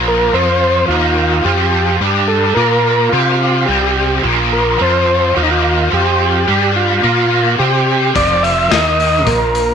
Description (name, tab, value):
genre	psychedelic rock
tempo	108 BPM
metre	4/4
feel	straight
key	unclear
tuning	A4 = 444 Hz
part	hand-pumped harmonium	sustained chords	0.0-9.7 s	Eb4 to C6	-26 LUFS	right 15 dB	none
part	overdriven semi-hollow guitar	riff	0.0-9.7 s	F2 to C5	-15 LUFS	equal	rotary speaker
part	deep dub fingered electric bass	bass	0.0-9.7 s	F1 to C3	-19 LUFS	equal	none
part	overdriven combo organ	melody	0.1-9.7 s	Eb4 to E5	-15 LUFS	equal	slapback echo
part	crunchy breakbeat drum kit	drums	8.2-9.7 s	hi-hat, kick drum, snare drum	-19 LUFS	left 5 dB	none
room	light reverb, small room ambience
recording	1960s-style stereo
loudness	-11 LUFS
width	side -7 dB against mid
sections	0.0-9.7 A section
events	none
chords	0.3 F5; 0.9 Eb5; 1.4 F5; 2.0 G5; 2.6 Bb5; 3.1 Csus2; 4.2 Bb5; 4.8 F5; 5.4 Eb5; 5.9 F5; 6.5 G5; 7.0 Bb5; 7.6 Csus2; 8.1 F5; 8.7 Eb5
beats	0.33 0.89 | 1.45 2.00 2.56 3.12 | 3.68 4.24 4.79 5.35 | 5.91 6.47 7.03 7.58 | 8.14 8.70 9.26